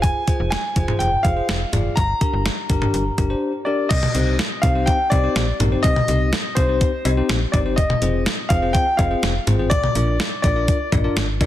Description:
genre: synth-pop.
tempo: 124 BPM.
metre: 4/4.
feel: straight.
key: C minor.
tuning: A4 = 436 Hz.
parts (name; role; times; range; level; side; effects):
warm grand piano; melody; 0.0-10.9 s; C5 to Bb5; -23 LUFS; left 1 dB; tape echo.
bell-like tine electric piano; accompaniment; 0.0-11.5 s; C4 to Eb5; -25 LUFS; left 3 dB; none.
slap-like FM bass; bass; 0.0-11.5 s; F1 to C2; -22 LUFS; equal; none.
clean 12-bit digital drum machine; drums; 0.0-11.5 s; cowbell, crash cymbal, hi-hat, kick drum, snare drum, toms; -21 LUFS; equal; none.
room: moderate plate reverb, RT60 2.2 s.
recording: dense, heavily limited modern master.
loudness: -17 LUFS.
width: side -13 dB against mid.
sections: 0.0-3.9 A section; 3.9-11.5 B section.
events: silent gap 3.4-3.9.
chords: 0.0 Fm; 2.0 Gm; 3.9 Cm; 7.8 Fm; 9.7 Bb.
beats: | 0.04 0.52 1.00 1.49 | 1.97 2.46 2.94 3.42 | 3.91 4.39 4.87 5.36 | 5.84 6.33 6.81 7.29 | 7.78 8.26 8.74 9.23 | 9.71 10.20 10.68 11.16.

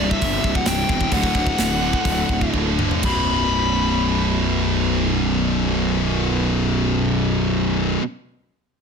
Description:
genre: heavy metal.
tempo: 117-137 BPM.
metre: 4/4.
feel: straight.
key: B phrygian.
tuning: A4 = 439 Hz.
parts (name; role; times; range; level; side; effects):
dark smooth lead guitar; melody; 0.0-7.9 s; E5 to B5; -25 LUFS; left 4 dB; overdrive, tape echo.
high-gain distorted guitar; riff; 0.0-8.0 s; B1 to D3; -23 LUFS; left 13 dB; distortion.
high-gain distorted guitar; riff; 0.0-8.0 s; B1 to D3; -23 LUFS; right 13 dB; distortion.
fuzz picked electric bass; bass; 0.0-8.0 s; B0 to G1; -23 LUFS; equal; overdrive.
modern studio drum kit; drums; 0.1-3.2 s; crash cymbal, hi-hat, kick drum, snare drum, toms; -24 LUFS; equal; none.
room: light reverb.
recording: dense, heavily limited modern master.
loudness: -18 LUFS.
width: side -6 dB against mid.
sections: 0.0-3.0 A section; 3.0-7.1 B section.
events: slowing down 0.0-3.0; drum fill 2.5-3.0.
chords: 0.0 C; 1.1 D; 3.0 B5.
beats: 0.21 0.66 | 1.11 1.58 2.05 2.54 | 3.04 3.56 4.07 4.58 | 5.10 5.61 6.12 6.63.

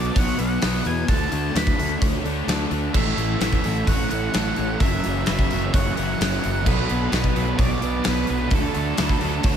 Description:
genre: rock, shoegaze and dream pop.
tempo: 129 BPM.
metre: 4/4.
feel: straight.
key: unclear.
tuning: A4 = 439 Hz.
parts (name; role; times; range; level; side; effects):
octave-fuzz lead guitar; melody; 0.0-9.6 s; A4 to B5; -29 LUFS; right 1 dB; distortion, analog delay.
twelve-string electric guitar; arpeggios; 0.0-9.6 s; A4 to C#5; -35 LUFS; right 8 dB; wide subtle chorus, analog delay.
raw garage guitar; riff; 0.0-9.6 s; F#2 to D4; -28 LUFS; right 1 dB; overdrive.
thick fuzz guitar; riff; 0.0-9.6 s; F#2 to D4; -29 LUFS; left 10 dB; distortion, ensemble chorus.
fuzz fingered electric bass; bass; 0.0-9.6 s; F#1 to E2; -26 LUFS; equal; overdrive.
gated 80s drum kit; drums; 0.2-9.6 s; crash cymbal, hi-hat, kick drum, snare drum; -23 LUFS; equal; none.
biting overdriven guitar; riff; 2.9-9.6 s; F#2 to E4; -30 LUFS; right 12 dB; reverse reverb.
room: small room reverb.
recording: none.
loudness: -19 LUFS.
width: side -8 dB against mid.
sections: 0.0-9.6 A section.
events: none.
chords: 0.0 B7(no3); 1.1 D5; 3.0 Aadd9; 4.8 F#7; 6.7 Bm7; 8.5 D.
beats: 0.17 0.63 | 1.10 1.56 2.03 2.49 | 2.96 3.42 3.88 4.35 | 4.81 5.28 5.74 6.20 | 6.67 7.13 7.59 8.06 | 8.52 8.98 9.45.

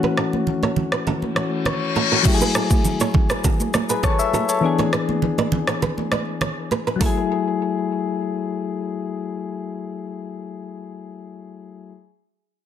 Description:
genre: afrobeats.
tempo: 101 BPM.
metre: 4/4.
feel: straight.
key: F# minor.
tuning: A4 = 441 Hz.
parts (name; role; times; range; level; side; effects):
soft electric-piano-like synth keys; accompaniment; 0.0-11.9 s; E3 to E5; -23 LUFS; left 5 dB; chorus, low-pass filter.
flamenco guitar; riff; 0.0-7.2 s; F#4 to D5; -26 LUFS; right 5 dB; low-pass filter, ping-pong delay.
congas; percussion; 0.0-7.3 s; none; -26 LUFS; right 4 dB; none.
afro-pop drum kit; drums; 0.2-7.2 s; crash cymbal, hi-hat, kick drum, rim click, shaker; -22 LUFS; equal; soft clipping on snare.
reverse cymbal; sound effects; 1.6-2.3 s; none; -23 LUFS; left 7 dB; none.
room: light reverb, digital ambience.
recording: dense, heavily limited modern master.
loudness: -19 LUFS.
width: side -9 dB against mid.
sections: 0.0-2.3 A section; 2.3-7.0 B section; 7.0-9.4 C section.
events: filter sweep 0.0-2.3; synth keys fill 1.4-2.3; reverse cymbal 1.6-2.3; break 4.6-7.0.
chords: 0.0 A6; 2.3 F#m9; 4.6 E7; 7.0 F#m9.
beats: 0.47 1.07 1.66 | 2.25 2.85 3.44 4.04 | 4.63 5.22 5.82 6.41 | 7.01 7.60 8.20 8.79.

